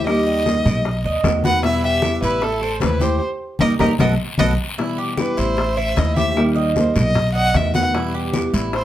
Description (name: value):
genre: latin, Cuban son and guajira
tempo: 152 BPM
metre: 4/4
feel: straight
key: E harmonic minor from 4.8 s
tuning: A4 = 440 Hz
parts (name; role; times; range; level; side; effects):
- warm violin; melody; 0.0-8.8 s; A4 to F#5; -22 LUFS; equal; none
- nylon-string guitar; accompaniment; 0.0-8.8 s; B2 to G4; -22 LUFS; left 1 dB; none
- Cuban tres; arpeggios; 0.0-8.8 s; D#4 to D#5; -24 LUFS; right 4 dB; none
- upright bass; bass; 0.0-8.8 s; A1 to E2; -22 LUFS; equal; none
- bongos; percussion; 0.1-8.8 s; none; -28 LUFS; left 6 dB; none
- claves; percussion; 0.1-8.5 s; none; -34 LUFS; right 3 dB; none
- congas; percussion; 0.1-8.8 s; none; -25 LUFS; left 1 dB; none
- guiro; percussion; 0.1-8.8 s; none; -34 LUFS; left 4 dB; none
room: light reverb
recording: close, detailed microphones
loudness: -16 LUFS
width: side -12 dB against mid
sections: 0.0-4.8 A section; 4.8-8.8 B section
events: band accent 3.2-4.8; drum fill 3.8-4.8; violin solo 4.8-8.8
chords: 0.1 D#; 0.9 B7; 1.6 Em; 2.4 Am; 3.2 D#; 4.0 B7; 4.8 Em; 5.6 Am; 6.4 D#; 7.2 B7; 7.9 Em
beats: | 0.07 0.46 0.85 1.25 | 1.64 2.03 2.43 2.82 | 3.21 3.61 4.00 4.39 | 4.79 5.18 5.58 5.97 | 6.36 6.76 7.15 7.54 | 7.94 8.33 8.73